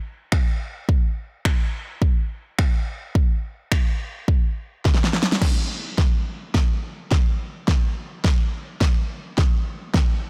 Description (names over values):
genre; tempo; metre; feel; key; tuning
pop; 106 BPM; 4/4; straight; none; none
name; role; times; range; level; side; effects
pop drum kit; drums; 0.3-10.1 s; crash cymbal, finger snaps, kick drum, snare drum; -22 LUFS; equal; soft clipping on snare
room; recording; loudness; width
little or no reverb; blown-out, overdriven recording, overdrive; -23 LUFS; mono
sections
0.0-5.4 A section; 5.4-10.3 B section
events
drum fill 4.8-5.4, 5.4-10.3; build-up 5.4-10.3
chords
none